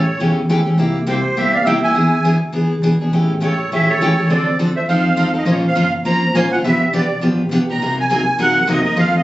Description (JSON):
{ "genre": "acoustic string swing (jazz manouche)", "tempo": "205 BPM", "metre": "4/4", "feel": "swing 59% on 8ths", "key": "unclear", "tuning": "A4 = 440 Hz", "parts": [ { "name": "musette accordion", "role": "melody", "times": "0.0-9.2 s", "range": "C5 to Bb5", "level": "-18 LUFS", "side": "right 1 dB", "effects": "none" }, { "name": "warm clarinet", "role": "second line", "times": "0.0-5.3 s", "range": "G4 to E5", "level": "-22 LUFS", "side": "right 2 dB", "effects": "none" }, { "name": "upright bass", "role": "bass", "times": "0.0-9.2 s", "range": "E1 to Gb2", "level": "-24 LUFS", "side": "right 1 dB", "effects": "none" }, { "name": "picked steel-string acoustic guitar", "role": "accompaniment", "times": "0.2-9.2 s", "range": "B2 to C5", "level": "-16 LUFS", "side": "equal", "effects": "none" } ], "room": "moderate studio reverb, RT60 0.8 s", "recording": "recorded on a phone in the room, club reverb, compression, nothing above 7.9 kHz", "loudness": "-14 LUFS", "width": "side -16 dB against mid", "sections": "0.0-5.5 A section; 5.5-9.2 B section", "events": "none", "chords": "0.0 A7; 0.8 C7; 1.9 E7; 3.1 A7; 4.3 Dm7; 4.9 F7; 5.5 Bbmadd9; 6.6 G7/B; 7.8 Cm7b5", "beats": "0.19 0.48 | 0.77 1.07 1.36 1.65 | 1.95 2.24 2.53 2.83 | 3.12 3.41 3.71 4.00 | 4.29 4.58 4.88 5.17 | 5.46 5.75 6.04 6.34 | 6.63 6.92 7.21 7.50 | 7.80 8.09 8.38 8.67 | 8.96" }